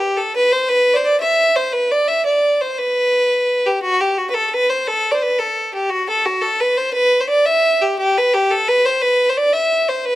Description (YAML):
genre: celtic folk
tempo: 115 BPM (dotted quarters)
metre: 6/8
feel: straight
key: unclear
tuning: A4 = 441 Hz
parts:
  - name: clear fiddle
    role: solo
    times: 0.0-10.2 s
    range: F#4 to E5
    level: -14 LUFS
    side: equal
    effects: none
room: small room reverb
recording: dry, close 1970s-style studio recording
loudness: -14 LUFS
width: side -15 dB against mid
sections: 0.0-5.9 A section; 5.9-10.2 A section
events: none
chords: none